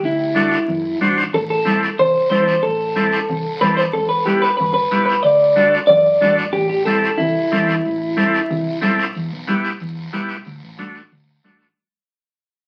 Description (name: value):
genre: latin, cumbia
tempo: 184 BPM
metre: 4/4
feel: straight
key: unclear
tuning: A4 = 440 Hz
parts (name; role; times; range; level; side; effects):
- hollow-body short-scale fingered electric bass; bass; 0.0-11.7 s; E1 to F#2; -31 LUFS; equal; none
- congas; percussion; 0.0-11.6 s; none; -26 LUFS; equal; none
- guiro; percussion; 0.0-11.8 s; none; -34 LUFS; equal; none
- clean electric guitar; melody; 0.1-8.8 s; E4 to D5; -18 LUFS; equal; spring reverb
- combo organ; accompaniment; 0.3-11.7 s; A3 to C5; -23 LUFS; equal; none
room: wet studio reverb, RT60 0.6 s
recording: very old 78 rpm record, vinyl crackle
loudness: -17 LUFS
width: mono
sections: 0.0-9.2 A section; 9.2-11.8 B section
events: fade-out 9.2-11.8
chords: 0.0 D; 1.3 Am; 3.9 Em; 5.2 D; 6.5 Am; 9.2 Em; 10.5 D